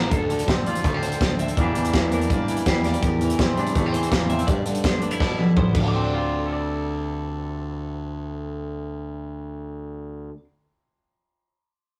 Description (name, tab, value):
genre	math rock and midwest emo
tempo	165 BPM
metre	4/4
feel	straight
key	D minor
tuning	A4 = 440 Hz
part	twelve-string electric guitar	arpeggios	0.0-10.4 s	A4 to D6	-35 LUFS	equal	harmonic tremolo
part	fuzz fingered electric bass	bass	0.0-10.3 s	A1 to B2	-30 LUFS	equal	overdrive
part	twangy electric guitar	accompaniment	0.1-10.4 s	D2 to D5	-30 LUFS	equal	none
part	modern studio drum kit	drums	0.1-5.8 s	crash cymbal, hi-hat, kick drum, snare drum, toms	-25 LUFS	equal	none
room	moderate studio reverb, RT60 0.6 s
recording	rough rehearsal-room recording, tube saturation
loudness	-23 LUFS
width	mono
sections	0.1-5.9 A section; 5.9-8.8 B section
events	drum fill 5.2-5.9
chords	0.1 Dm7; 1.6 Em7b5; 3.0 C7/E; 4.5 G; 5.8 Dm; 5.9 Dm7